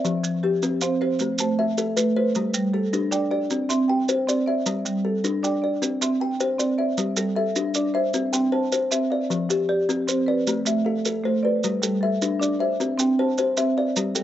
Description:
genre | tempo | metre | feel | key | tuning
southern african traditional, mbira-style interlocking cycle | 103 BPM (dotted quarters) | 12/8 | straight | G mixolydian | A4 = 440 Hz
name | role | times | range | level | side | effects
kalimba | arpeggios | 0.0-14.2 s | F3 to C6 | -24 LUFS | left 4 dB | none
marimba with medium hard mallets | arpeggios | 0.0-14.2 s | F3 to A5 | -24 LUFS | right 3 dB | none
maracas | percussion | 0.0-14.2 s | none | -28 LUFS | right 5 dB | none
room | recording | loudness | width
little or no reverb | recorded outdoors, with no room sound, nothing above 7.9 kHz | -20 LUFS | side -12 dB against mid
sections
0.0-7.0 A section; 7.0-14.2 B section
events
none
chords
0.0 F5; 1.2 Am; 2.4 G; 3.5 C; 4.7 G5; 5.8 C; 7.0 G5; 8.1 C; 9.3 F5; 10.5 Am; 11.6 G; 12.8 C

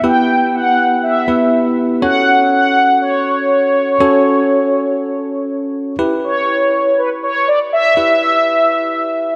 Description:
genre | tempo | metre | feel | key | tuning
pop | 121 BPM | 4/4 | straight | E dorian | A4 = 440 Hz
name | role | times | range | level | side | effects
mellow synth brass | melody | 0.0-9.4 s | B4 to G5 | -16 LUFS | equal | chorus, analog delay
bell-like tine electric piano | accompaniment | 0.0-9.4 s | B3 to C#5 | -19 LUFS | equal | none
room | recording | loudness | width
wet lush hall reverb, RT60 3.2 s | dreamy mix soaked in reverb | -14 LUFS | mono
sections
0.0-6.0 A section; 6.0-9.4 B section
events
none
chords
0.0 Em; 2.0 F#m; 6.0 Em

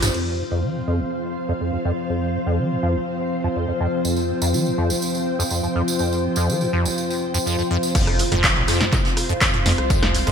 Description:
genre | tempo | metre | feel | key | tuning
acid house | 123 BPM | 4/4 | straight | unclear | A4 = 438 Hz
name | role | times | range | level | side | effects
string machine, full ensemble | sustained chords | 0.0-10.3 s | F3 to G5 | -25 LUFS | equal | ensemble chorus, sidechain pumping
acid bass, square | riff | 0.0-10.3 s | F1 to F3 | -24 LUFS | equal | analog chorus, sidechain pumping, ping-pong delay
saturated sub bass | bass | 0.0-0.1, 8.3-10.3 s | F1 to F2 | -26 LUFS | equal | sidechain pumping
punchy analog drum machine | drums | 0.0-0.2, 8.0-10.3 s | crash cymbal, handclaps, hi-hat, rim click, snare drum, toms | -22 LUFS | equal | gated reverb
soft brush drum kit | drums | 0.0-0.1, 8.0-10.3 s | hi-hat, snare drum, tambourine | -29 LUFS | equal | high-pass filter on hats, high-pass filter on snare, high-pass filter on perc, high-pass filter on room, gated reverb
tambourine | percussion | 0.0-0.1, 4.0-7.9 s | none | -29 LUFS | right 4 dB | none
warbly tape-like pad | texture | 0.0-10.3 s | F4 to F5 | -28 LUFS | left 2 dB | chorus, built-in reverb, phaser, sidechain pumping
electronic kick drum | drums | 8.0-10.0 s | none | -22 LUFS | equal | none
impact | sound effects | 8.0-9.9 s | none | -33 LUFS | right 1 dB | none
room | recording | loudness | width
moderate lush hall reverb, RT60 1.8 s, small room ambience | bright 1980s-style digital production | -19 LUFS | side -7 dB against mid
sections
0.1-8.0 A section; 8.0-10.3 B section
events
filter sweep on acid bass 0.1-8.0; drop 8.0-10.3; impact 8.0-9.9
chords
0.1 F5

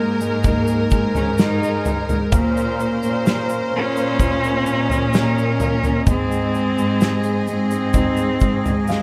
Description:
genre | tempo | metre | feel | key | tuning
pop ballad | 64 BPM | 4/4 | straight | unclear | A4 = 438 Hz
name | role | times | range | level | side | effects
dark cello | melody | 0.0-9.0 s | Bb3 to Eb4 | -24 LUFS | equal | none
warm studio violin section | second line | 0.0-9.0 s | Ab4 to C5 | -30 LUFS | equal | none
warm grand piano | accompaniment | 0.0-9.0 s | Ab3 to F5 | -28 LUFS | equal | none
accordion | sustained chords | 0.0-9.0 s | C4 to Bb5 | -31 LUFS | equal | light tremolo tuning
clear studio cello section | bass | 0.0-9.0 s | Ab2 to Bb2 | -25 LUFS | equal | none
tube shaker | percussion | 0.2-9.0 s | none | -42 LUFS | equal | none
loose indie drum kit | drums | 0.4-9.0 s | kick drum, snare drum, toms | -23 LUFS | equal | none
room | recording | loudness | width
little or no reverb | none | -19 LUFS | mono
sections
0.0-9.0 A section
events
grand piano fill 8.4-9.0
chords
0.0 Absus2; 2.3 Bbm; 6.1 Ab

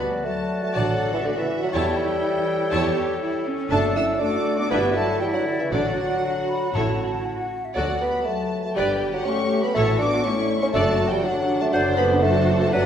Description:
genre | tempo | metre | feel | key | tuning
quick classical-period movement for symphony orchestra | 120 BPM | 4/4 | straight | D major | A4 = 439 Hz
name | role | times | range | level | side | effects
bright clarinet | second line | 0.0-12.9 s | D4 to C5 | -32 LUFS | left 2 dB | none
hollow concert flute | second line | 0.0-12.9 s | C#5 to B5 | -32 LUFS | equal | none
warm studio violin section | second line | 0.0-12.9 s | D5 to E6 | -31 LUFS | left 1 dB | none
mellow bassoon | accompaniment | 0.0-12.9 s | D3 to E4 | -24 LUFS | equal | none
dark French horn section | sustained chords | 0.0-12.9 s | A2 to C#4 | -29 LUFS | left 2 dB | none
warm studio double bass section | bass | 0.0-12.9 s | F#1 to E2 | -29 LUFS | right 2 dB | none
timpani | percussion | 0.0-0.5, 6.7-7.5 s | A2 to D3 | -32 LUFS | equal | none
warm studio violin section | melody | 0.7-12.9 s | B4 to A5 | -33 LUFS | left 2 dB | none
warm studio viola section | accompaniment | 0.7-12.9 s | D4 to D5 | -29 LUFS | equal | none
warm studio cello section | bass | 0.7-12.9 s | C#4 to A4 | -29 LUFS | right 3 dB | none
room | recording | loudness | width
wet scoring stage reverb, RT60 1.7 s | heard from further back in the room | -20 LUFS | side -8 dB against mid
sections
0.0-12.9 A section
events
none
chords
0.0 D; 1.7 A7/E; 3.7 D/F#; 4.7 Em7/G; 5.7 D/A; 6.7 A; 7.8 D; 8.8 G; 9.8 A; 10.7 D/F#; 11.7 D7/F#

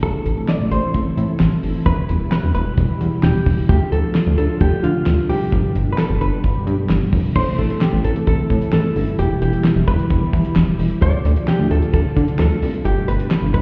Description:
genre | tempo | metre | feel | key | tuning
synth-pop | 131 BPM | 4/4 | straight | A minor | A4 = 440 Hz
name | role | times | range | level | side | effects
hollow-body jazz guitar | melody | 0.0-13.6 s | F4 to D5 | -27 LUFS | equal | digital delay
string machine, cellos | sustained chords | 0.0-13.6 s | A2 to A4 | -24 LUFS | equal | ensemble chorus
chorused synth bass | bass | 0.0-13.6 s | E1 to D3 | -20 LUFS | equal | none
damped 70s drum kit | drums | 0.0-13.6 s | crash cymbal, handclaps, hi-hat, kick drum, snare drum | -22 LUFS | equal | none
room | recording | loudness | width
light reverb, small room ambience | heard muffled through a wall, stone room reverb, EQ | -18 LUFS | mono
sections
0.0-7.4 A section; 7.4-13.6 B section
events
none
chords
0.0 Am; 1.9 Em; 3.7 Dm; 5.5 G; 7.4 Am; 9.2 Em; 11.0 Dm; 12.9 G

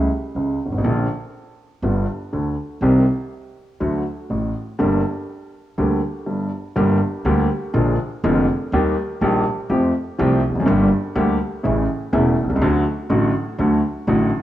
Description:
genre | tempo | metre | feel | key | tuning
tango | 122 BPM | 4/4 | rubato | G minor | A4 = 440 Hz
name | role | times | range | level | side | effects
warm baby grand piano | accompaniment | 0.0-14.3 s | E1 to G4 | -18 LUFS | equal | cassette tape
upright bass | bass | 0.0-14.3 s | E1 to F2 | -25 LUFS | right 1 dB | none
room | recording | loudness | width
moderate spring reverb, RT60 1.8 s | home recording on cassette, small room ambience | -17 LUFS | side -13 dB against mid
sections
0.0-6.8 A section; 6.8-14.4 B section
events
break 6.3-6.8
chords
0.0 A7/C#; 0.8 Bb; 1.8 G7; 2.8 Cm; 3.8 D; 4.8 Gm; 7.7 Bb7; 8.7 Eb; 9.7 Fadd9; 10.7 Gm; 11.6 A; 12.6 D

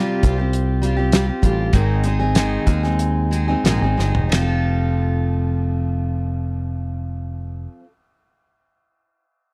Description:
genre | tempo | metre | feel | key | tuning
folk rock and heartland rock | 87-102 BPM | 4/4 | straight | unclear | A4 = 436 Hz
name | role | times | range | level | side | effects
picked steel-string acoustic guitar | accompaniment | 0.0-7.9 s | Ab2 to A4 | -25 LUFS | equal | none
picked electric bass | bass | 0.2-7.7 s | F1 to Eb2 | -23 LUFS | equal | none
damped 70s drum kit | drums | 0.2-4.5 s | hi-hat, kick drum, ride cymbal, snare drum, toms | -22 LUFS | equal | none
room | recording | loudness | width
little or no reverb | dry, close 1970s-style studio recording | -20 LUFS | mono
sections
0.0-4.3 A section; 4.3-7.1 B section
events
slowing down 0.0-4.3; drum fill 4.0-4.3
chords
0.0 Csus4; 1.7 Ab; 4.3 F

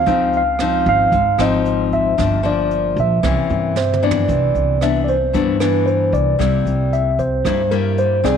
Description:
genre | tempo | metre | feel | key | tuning
bossa nova | 114 BPM | 4/4 | straight | C major from 4.3 s | A4 = 440 Hz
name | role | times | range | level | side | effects
mellow tine electric piano | melody | 0.0-8.4 s | Bb4 to F5 | -18 LUFS | right 1 dB | wide subtle chorus
nylon-string guitar | accompaniment | 0.0-8.4 s | G2 to Ab4 | -20 LUFS | left 8 dB | none
upright bass | bass | 0.0-8.4 s | G1 to G2 | -21 LUFS | right 2 dB | none
jazz brush drum kit | drums | 0.1-8.4 s | hi-hat, kick drum, rim click, snare drum, toms | -28 LUFS | right 6 dB | none
room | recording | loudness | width
moderate echo chamber reverb, RT60 2.0 s | 1960s-style stereo with parts hard left and right | -15 LUFS | side -7 dB against mid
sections
0.0-4.3 A section; 4.3-8.4 B section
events
drum fill 3.8-4.3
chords
0.1 Dbmaj9; 2.2 Gm7; 3.2 C7b9; 4.3 Cmaj9; 6.4 C7

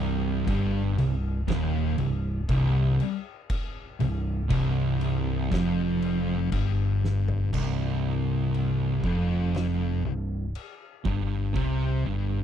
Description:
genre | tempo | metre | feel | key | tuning
stoner and doom metal | 60 BPM | 4/4 | straight | C minor | A4 = 442 Hz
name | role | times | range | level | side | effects
fuzz guitar | riff | 0.0-12.4 s | C2 to C3 | -28 LUFS | right 8 dB | distortion
thick fuzz guitar | riff | 0.0-12.4 s | C2 to C3 | -28 LUFS | left 7 dB | distortion
overdriven fingered electric bass | bass | 0.0-12.4 s | C1 to C2 | -30 LUFS | equal | none
oversized low-tuned drum kit | drums | 0.5-11.8 s | crash cymbal, kick drum, snare drum, toms | -35 LUFS | equal | none
room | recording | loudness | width
little or no reverb | dry, close 1970s-style studio recording | -24 LUFS | side -9 dB against mid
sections
0.0-7.5 A section; 7.5-12.4 B section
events
drum fill 7.0-7.5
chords
0.0 Cm; 7.5 C5

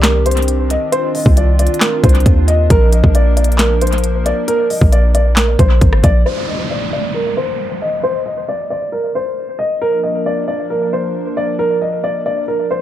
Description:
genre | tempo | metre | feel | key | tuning
hip hop, trap | 135 BPM | 4/4 | half-time | unclear | A4 = 440 Hz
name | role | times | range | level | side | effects
dark concert grand piano | melody | 0.0-12.8 s | Bb4 to Eb5 | -17 LUFS | equal | low-pass filter, tape echo
hollow soft pad | sustained chords | 0.0-6.2, 9.8-12.8 s | Eb3 to Bb4 | -22 LUFS | equal | chorus, low-pass filter
warm 808-style bass | bass | 0.0-6.2 s | Ab1 to Eb2 | -12 LUFS | equal | none
trap drum kit | drums | 0.0-6.1 s | handclaps, hi-hat, kick drum, rim click, snare drum | -14 LUFS | equal | tape echo
downlifter | sound effects | 6.3-9.8 s | none | -25 LUFS | right 2 dB | none
room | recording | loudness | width
little or no reverb | echo-heavy mix | -12 LUFS | side -12 dB against mid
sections
0.0-6.3 A section; 6.3-12.8 B section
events
filter sweep 6.3-12.8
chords
0.0 Cmadd9; 2.7 Bb; 6.3 N.C.; 9.8 Bb

